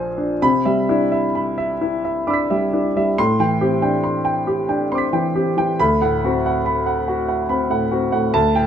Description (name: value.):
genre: classical, impressionist solo piano.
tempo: 37-49 BPM (dotted quarters).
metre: 6/8.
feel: rubato.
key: C major.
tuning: A4 = 442 Hz.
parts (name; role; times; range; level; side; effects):
warm grand piano; solo; 0.0-8.7 s; Bb1 to B6; -17 LUFS; equal; none.
room: light reverb.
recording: close, detailed microphones.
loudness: -17 LUFS.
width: side -8 dB against mid.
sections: 0.4-8.7 A section.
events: none.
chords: 0.4 Cmaj9; 3.2 Am11; 5.8 D6.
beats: | 0.42 1.81 | 3.18 4.47 | 5.79 7.06 | 8.33.